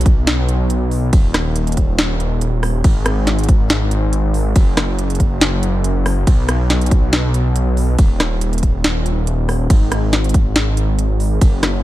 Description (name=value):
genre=future bass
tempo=140 BPM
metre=4/4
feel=swing 54% on 16ths, half-time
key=unclear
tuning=A4 = 441 Hz
part: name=wide detuned saw bass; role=bass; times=0.0-11.8 s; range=D#1 to B1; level=-16 LUFS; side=equal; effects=chorus, sidechain pumping
part: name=trap drum kit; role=drums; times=0.0-11.7 s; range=hi-hat, ride cymbal, rim click, snare drum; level=-19 LUFS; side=equal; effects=none
part: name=electronic kick drum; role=drums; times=0.1-11.5 s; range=none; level=-13 LUFS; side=equal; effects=none
room=digital ambience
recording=none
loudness=-14 LUFS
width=side -15 dB against mid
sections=0.0-11.8 A section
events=none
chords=none